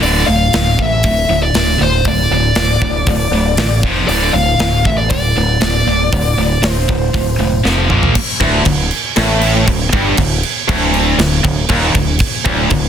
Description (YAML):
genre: heavy metal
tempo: 118 BPM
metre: 4/4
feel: straight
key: D minor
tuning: A4 = 439 Hz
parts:
  - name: dark smooth lead guitar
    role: melody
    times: 0.0-7.6 s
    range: C5 to F5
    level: -17 LUFS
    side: left 1 dB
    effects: overdrive, digital delay
  - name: high-gain distorted guitar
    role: riff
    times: 0.0-12.9 s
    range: D2 to Bb3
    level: -17 LUFS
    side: right 1 dB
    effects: distortion
  - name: growling fingered electric bass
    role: bass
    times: 0.0-12.9 s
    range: D1 to Bb1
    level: -17 LUFS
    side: equal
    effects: overdrive
  - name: tight metal drum kit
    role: drums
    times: 0.0-12.8 s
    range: crash cymbal, hi-hat, kick drum, snare drum, toms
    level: -17 LUFS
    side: equal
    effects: none
  - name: tight distorted guitar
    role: riff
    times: 8.4-12.9 s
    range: D2 to A2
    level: -17 LUFS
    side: equal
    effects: distortion
room: small room ambience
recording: dense, heavily limited modern master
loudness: -11 LUFS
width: side -9 dB against mid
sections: 0.0-8.2 A section; 8.2-12.9 B section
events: drum fill 7.6-8.2; half time 8.2-12.9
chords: 0.0 D5; 3.8 F5; 4.1 D5; 7.6 F5; 7.9 Bb5; 8.2 D5